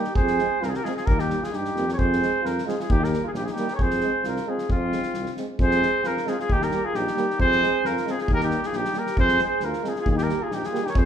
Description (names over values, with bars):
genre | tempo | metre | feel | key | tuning
balkan folk, Balkan brass band | 134 BPM | 2/4 | straight | F minor | A4 = 439 Hz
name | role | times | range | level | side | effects
mellow trumpet | melody | 0.0-11.1 s | F4 to Db5 | -25 LUFS | equal | none
mellow flugelhorn | second line | 0.0-11.1 s | C4 to Bb4 | -31 LUFS | right 5 dB | none
clear euphonium | accompaniment | 0.0-10.8 s | G3 to Ab3 | -34 LUFS | right 5 dB | none
mellow French horn | accompaniment | 0.0-10.8 s | Bb3 to C4 | -35 LUFS | left 1 dB | none
loose indie drum kit | percussion | 0.0-11.1 s | kick drum, snare drum | -28 LUFS | equal | none
warm tuba | bass | 0.2-11.1 s | Bb1 to G2 | -28 LUFS | equal | none
room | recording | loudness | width
moderate large studio reverb, RT60 1.1 s | band playing live in one room | -21 LUFS | side -9 dB against mid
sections
0.0-5.6 A section; 5.6-11.1 A section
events
none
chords
0.2 Fm; 1.1 Eb; 2.0 Fm; 2.9 Eb; 3.8 Fm; 6.5 Eb; 7.4 Fm; 8.3 Eb; 9.2 Fm; 10.1 Eb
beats
| 0.16 0.62 | 1.07 1.53 | 1.98 2.43 | 2.89 3.34 | 3.79 4.24 | 4.69 5.14 | 5.59 6.04 | 6.49 6.93 | 7.38 7.83 | 8.27 8.72 | 9.16 9.61 | 10.05 10.49 | 10.94